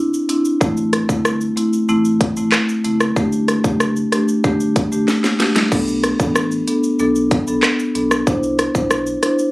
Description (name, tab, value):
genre	dancehall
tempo	94 BPM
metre	4/4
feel	straight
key	B phrygian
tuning	A4 = 440 Hz
part	marimba with medium mallets	accompaniment	0.0-9.4 s	A3 to C5	-16 LUFS	equal	sidechain pumping
part	island pop drum kit	drums	0.1-9.5 s	crash cymbal, handclaps, hi-hat, kick drum, rim click, shaker, snare drum	-18 LUFS	equal	none
part	saturated sub bass	bass	0.6-9.2 s	F#1 to C2	-30 LUFS	equal	none
room	light reverb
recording	recorded on a phone in the room, club ambience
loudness	-15 LUFS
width	side -21 dB against mid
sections	0.0-5.7 A section; 5.7-9.5 B section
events	drum fill 5.1-5.7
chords	0.0 Cadd9; 0.6 Am; 3.2 Gsus2; 5.7 Bm7; 8.3 Cadd9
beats	| 0.61 1.25 1.89 2.52 | 3.16 3.80 4.44 5.08 | 5.72 6.36 6.99 7.63 | 8.27 8.91